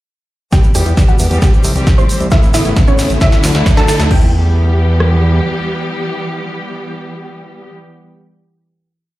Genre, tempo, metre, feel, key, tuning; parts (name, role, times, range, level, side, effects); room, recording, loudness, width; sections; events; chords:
uplifting trance; 134 BPM; 4/4; straight; E minor; A4 = 440 Hz
wide unison pluck; melody; 0.5-7.7 s; C#4 to C6; -20 LUFS; equal; analog chorus, sidechain pumping, digital delay
dark studio string section; sustained chords; 0.5-7.7 s; C#3 to G4; -20 LUFS; equal; sidechain pumping
punchy analog drum machine; drums; 0.5-4.2 s; crash cymbal, hi-hat, snare drum, toms; -22 LUFS; equal; overdrive, high-pass filter on snare, small room ambience, sidechain pumping on hats, high-pass filter on hats, sidechain pumping on toms, high-pass filter on toms, sidechain pumping on cymbals, high-pass filter on cymbals
techno drum kit; drums; 0.5-5.1 s; kick drum, rim click; -11 LUFS; equal; small room ambience
tube shaker; percussion; 0.5-4.1 s; -27 LUFS; right 3 dB
riser; sound effects; 1.6-4.1 s; -26 LUFS; right 3 dB
fat analog bass; bass; 0.7-5.4 s; A1 to E2; -13 LUFS; equal; sidechain pumping
light reverb; played on a big sound system in a bare room, large studio reverb; -10 LUFS; side -16 dB against mid
0.5-4.1 build; 4.1-7.7 final chord
build-up 0.5-4.1; drum fill 0.5-4.1; filter sweep on synth pluck 0.5-4.1; riser 1.6-4.1
0.5 Em; 1.4 C; 2.3 Aadd9; 3.2 Dadd9; 4.1 Em